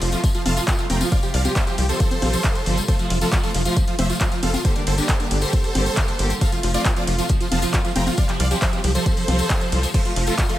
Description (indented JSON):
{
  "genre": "uplifting trance",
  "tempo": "136 BPM",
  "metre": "4/4",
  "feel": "straight",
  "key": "F major",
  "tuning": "A4 = 440 Hz",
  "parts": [
    { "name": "supersaw chords", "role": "melody", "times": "0.0-10.6 s", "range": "D4 to Bb5", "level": "-26 LUFS", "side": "right 2 dB", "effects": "sidechain pumping, tape echo" },
    { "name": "warm studio string section", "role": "sustained chords", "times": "0.0-10.6 s", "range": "C3 to G4", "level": "-28 LUFS", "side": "left 1 dB", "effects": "sidechain pumping" },
    { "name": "liquid acid bass", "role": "arpeggios", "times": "0.0-10.6 s", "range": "D3 to F4", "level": "-29 LUFS", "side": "right 2 dB", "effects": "phaser, ensemble chorus, sidechain pumping, tape echo" },
    { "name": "tight sequencer bass", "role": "bass", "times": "0.0-10.3 s", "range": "F1 to C2", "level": "-22 LUFS", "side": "equal", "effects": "sidechain pumping" },
    { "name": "punchy analog drum machine", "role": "drums", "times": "0.0-10.6 s", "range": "congas, crash cymbal, handclaps, hi-hat, ride cymbal", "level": "-26 LUFS", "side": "left 1 dB", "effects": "none" },
    { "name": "tambourine", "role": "percussion", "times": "0.1-10.6 s", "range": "none", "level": "-32 LUFS", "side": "left 5 dB", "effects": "none" },
    { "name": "electronic kick drum", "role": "drums", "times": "0.2-10.5 s", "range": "none", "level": "-21 LUFS", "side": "equal", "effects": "none" }
  ],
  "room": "digital ambience",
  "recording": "none",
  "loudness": "-18 LUFS",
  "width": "side -14 dB against mid",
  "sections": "0.0-10.6 A section",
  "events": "none",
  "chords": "0.0 F; 1.1 Csus4; 2.9 F; 4.6 Gm; 6.4 F; 8.2 Csus4; 9.9 F"
}